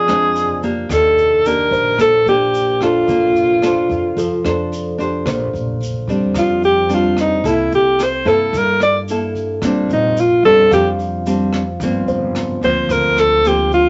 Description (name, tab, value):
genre	bossa nova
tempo	110 BPM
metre	4/4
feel	straight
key	Bb major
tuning	A4 = 440 Hz
part	warm alto saxophone	melody	0.0-13.9 s	D4 to D5	-16 LUFS	equal	none
part	nylon-string guitar	accompaniment	0.0-13.9 s	G2 to C5	-22 LUFS	equal	none
part	tine electric piano	accompaniment	0.0-13.9 s	A4 to F5	-30 LUFS	equal	overdrive
part	upright bass	bass	0.0-13.9 s	G1 to G2	-28 LUFS	equal	none
part	vintage brush drum kit	drums	0.1-13.8 s	hi-hat, kick drum, rim click	-31 LUFS	equal	none
part	tube shaker	percussion	0.1-13.9 s	none	-42 LUFS	equal	none
room	moderate studio reverb, RT60 0.6 s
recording	nothing above 7.7 kHz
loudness	-16 LUFS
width	mono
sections	0.0-5.3 A section; 5.3-13.9 B section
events	alto saxophone solo 5.3-13.9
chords	0.0 Bb9; 0.9 Ebmaj7; 3.1 Bbmaj9; 7.4 C6; 9.6 Bb69; 11.8 Gm7